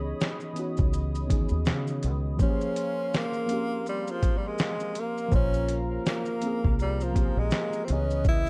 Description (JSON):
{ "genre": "lo-fi hip hop", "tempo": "82 BPM", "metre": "4/4", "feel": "swing 56% on 16ths", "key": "Bb dorian", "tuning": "A4 = 440 Hz", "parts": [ { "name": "muted felt-like synth keys", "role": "accompaniment", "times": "0.0-8.5 s", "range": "Eb3 to Eb5", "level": "-35 LUFS", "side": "equal", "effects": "chorus, cassette tape" }, { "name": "hollow soft pad", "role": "sustained chords", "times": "0.0-8.5 s", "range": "Bb4 to Eb6", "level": "-43 LUFS", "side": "equal", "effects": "chorus" }, { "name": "deep dub fingered electric bass", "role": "bass", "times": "0.0-8.5 s", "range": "Bb1 to Db3", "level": "-31 LUFS", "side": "equal", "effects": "none" }, { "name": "dusty soul sampler-style drum kit", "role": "drums", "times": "0.2-8.5 s", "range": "hi-hat, kick drum, shaker, snare drum", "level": "-29 LUFS", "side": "equal", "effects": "none" }, { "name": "breathy tenor saxophone", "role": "melody", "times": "2.4-8.5 s", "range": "F3 to Fb4", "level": "-33 LUFS", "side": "equal", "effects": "none" } ], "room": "little or no reverb", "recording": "none", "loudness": "-28 LUFS", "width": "mono", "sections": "0.0-8.5 A section", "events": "break 0.0-2.4", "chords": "0.0 Dbm9; 2.4 Bbm9; 7.9 Dbm9" }